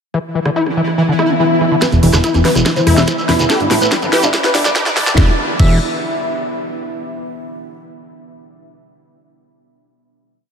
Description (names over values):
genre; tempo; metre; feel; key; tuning
psychedelic trance; 143 BPM; 4/4; straight; E minor; A4 = 440 Hz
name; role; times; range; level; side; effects
pulsing gated texture; sustained chords; 0.1-5.2 s; E3 to E4; -20 LUFS; left 1 dB; chorus, built-in reverb, sidechain pumping
screaming distorted acid line; riff; 0.1-5.8 s; D3 to G4; -19 LUFS; moving between left 4 dB and right 2 dB; distortion, chorus, auto-pan, sidechain pumping, diffuse ambient delay
drum and bass drum kit; drums; 0.1-5.7 s; crash cymbal, hi-hat, rim click, snare drum; -20 LUFS; equal; overdrive
deep dark ambient pad; texture; 1.1-6.8 s; B3 to B5; -23 LUFS; equal; chorus, built-in reverb, sidechain pumping
swell and riser; sound effects; 1.1-5.2 s; none; -25 LUFS; left 1 dB; none
wide unison lead; melody; 1.8-5.8 s; D4 to E5; -21 LUFS; equal; phaser, sidechain pumping, analog delay
electronic kick drum; drums; 1.8-5.7 s; none; -14 LUFS; equal; overdrive, high-pass filter on kick, high-pass filter on room
shekere; percussion; 1.8-5.2 s; none; -23 LUFS; right 2 dB; none
fat analog bass; bass; 1.9-5.8 s; E1 to A1; -15 LUFS; equal; none
room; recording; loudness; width
moderate huge ambient reverb, RT60 4.2 s; dreamy mix soaked in reverb, high-pass filter; -12 LUFS; side -6 dB against mid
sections
0.1-1.8 intro; 1.8-5.2 build; 5.2-6.9 final chord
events
filter sweep on acid bass 0.1-1.8, 1.8-5.2; swell 1.1-1.8; build-up 1.8-5.2; drum fill 1.8-5.2; filter sweep on analog synth lead 1.8-5.2; filter sweep on synth texture 1.8-5.2; filter sweep 1.8-5.2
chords
0.1 E5; 3.5 G5; 5.2 E5